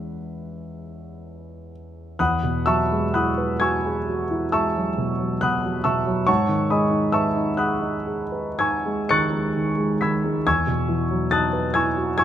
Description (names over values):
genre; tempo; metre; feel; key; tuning
classical, impressionist solo piano; 37-47 BPM (dotted quarters); 9/8; rubato; E major; A4 = 440 Hz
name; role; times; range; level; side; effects
warm concert grand piano; solo; 0.0-12.2 s; E2 to C#7; -20 LUFS; equal; none
room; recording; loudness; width
light reverb; close, detailed microphones; -20 LUFS; side -10 dB against mid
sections
0.0-2.2 A section; 2.2-12.2 A section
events
none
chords
0.0 E6; 2.2 Eadd9; 6.3 G#m7; 10.5 Emaj9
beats
0.66 | 2.19 3.62 4.97 | 6.28 7.58 9.10 | 10.45 11.76